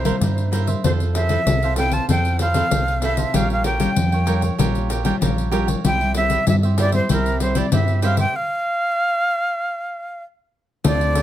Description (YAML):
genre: samba and choro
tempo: 96 BPM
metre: 4/4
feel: straight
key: unclear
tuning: A4 = 437 Hz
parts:
  - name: jazz flute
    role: melody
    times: 0.0-11.2 s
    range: Bb4 to A5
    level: -22 LUFS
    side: equal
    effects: none
  - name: cavaquinho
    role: accompaniment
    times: 0.0-11.2 s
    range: E4 to G5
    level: -27 LUFS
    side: right 8 dB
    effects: none
  - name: nylon-string guitar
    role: accompaniment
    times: 0.0-11.2 s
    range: G2 to A4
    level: -25 LUFS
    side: left 3 dB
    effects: none
  - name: metallic FM bass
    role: bass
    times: 0.0-11.2 s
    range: Bb1 to G2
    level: -21 LUFS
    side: right 1 dB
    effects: none
  - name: pandeiro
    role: percussion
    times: 0.1-11.2 s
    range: none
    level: -24 LUFS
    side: left 4 dB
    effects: none
room: light reverb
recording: close, detailed microphones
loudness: -17 LUFS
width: side -12 dB against mid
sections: 0.0-10.9 A section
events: stop 8.4-10.9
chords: 0.0 C7; 0.8 Fmaj7; 3.3 Bbm6; 5.9 C; 8.4 N.C.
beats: 0.22 | 0.85 1.47 2.10 2.72 | 3.35 3.97 4.60 5.22 | 5.85 6.48 7.10 7.73 | 8.35 8.98 9.60 10.23 | 10.85